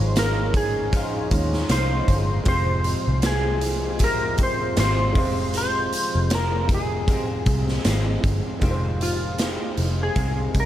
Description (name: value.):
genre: indie pop, bedroom pop.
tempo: 78 BPM.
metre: 4/4.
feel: swing 55% on 16ths.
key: F minor.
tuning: A4 = 441 Hz.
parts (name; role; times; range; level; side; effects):
clean lap steel guitar; melody; 0.0-10.7 s; F4 to C5; -26 LUFS; equal; analog chorus, ping-pong delay.
electric guitar through a small old amp; accompaniment; 0.0-10.7 s; F2 to F4; -30 LUFS; left 2 dB; ensemble chorus, warbly pitch drift.
warm upright piano; accompaniment; 0.0-10.7 s; Ab3 to C5; -33 LUFS; right 2 dB; cassette tape.
warm brass ensemble; sustained chords; 0.0-8.6 s; C3 to F4; -34 LUFS; equal; stereo widening.
vintage muted picked electric bass; bass; 0.0-10.7 s; F1 to Eb2; -24 LUFS; equal; none.
raw garage drum kit; drums; 0.2-10.7 s; hi-hat, kick drum, snare drum; -24 LUFS; equal; none.
room: light reverb, studio ambience.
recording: none.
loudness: -20 LUFS.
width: side -12 dB against mid.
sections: 0.0-8.6 A section; 8.6-10.7 B section.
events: none.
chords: 0.0 Dbadd9; 2.5 Fm; 8.6 Fm7.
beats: 0.16 0.93 1.70 | 2.47 3.24 4.01 4.78 | 5.55 6.32 7.08 7.85 | 8.62 9.39 10.16.